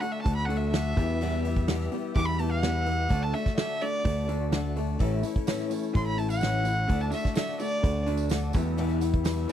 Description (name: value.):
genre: folk rock and heartland rock.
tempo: 127 BPM.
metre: 4/4.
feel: straight.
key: D major.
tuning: A4 = 435 Hz.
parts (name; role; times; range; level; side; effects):
warm fiddle; melody; 0.0-9.5 s; D5 to D6; -31 LUFS; right 1 dB; none.
picked steel-string acoustic guitar; accompaniment; 0.0-9.5 s; E2 to G4; -33 LUFS; left 8 dB; none.
tonewheel organ; sustained chords; 0.0-9.5 s; A3 to F#5; -40 LUFS; right 1 dB; slow rotary speaker, chorus vibrato.
electric guitar through a small old amp; riff; 0.0-9.5 s; E2 to D4; -34 LUFS; right 1 dB; none.
natural country drum kit; drums; 0.0-9.5 s; hi-hat, kick drum, snare drum; -28 LUFS; right 1 dB; none.
picked electric bass; bass; 0.3-9.5 s; A1 to E2; -29 LUFS; equal; none.
tambourine; percussion; 5.2-9.5 s; none; -47 LUFS; right 12 dB; none.
room: little or no reverb.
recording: dry, close 1970s-style studio recording.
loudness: -25 LUFS.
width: side -10 dB against mid.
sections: 0.0-9.5 A section.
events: fiddle solo 0.0-9.5.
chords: 0.0 D; 1.0 Em; 3.1 D; 5.0 A; 6.9 D; 8.5 Em.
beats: 0.25 0.73 | 1.20 1.68 2.15 2.63 | 3.10 3.58 4.05 4.52 | 5.00 5.47 5.95 6.42 | 6.89 7.37 7.84 8.31 | 8.79 9.26.